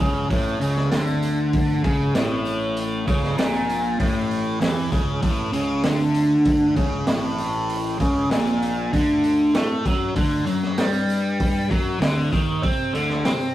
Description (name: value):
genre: psychedelic rock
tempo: 97 BPM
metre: 4/4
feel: straight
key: unclear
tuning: A4 = 444 Hz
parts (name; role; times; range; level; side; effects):
- fuzz guitar; riff; 0.0-13.5 s; A2 to C4; -21 LUFS; equal; distortion, phaser
- fuzz fingered electric bass; bass; 0.0-13.5 s; A1 to C3; -29 LUFS; equal; overdrive
- crunchy breakbeat drum kit; drums; 0.0-13.4 s; hi-hat, kick drum, snare drum; -24 LUFS; equal; none
- tambourine; percussion; 0.0-13.5 s; none; -47 LUFS; right 3 dB; none
room: moderate studio reverb, RT60 0.6 s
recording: rough rehearsal-room recording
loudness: -19 LUFS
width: side -14 dB against mid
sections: 0.0-13.5 A section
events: none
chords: 0.0 A; 8.9 D5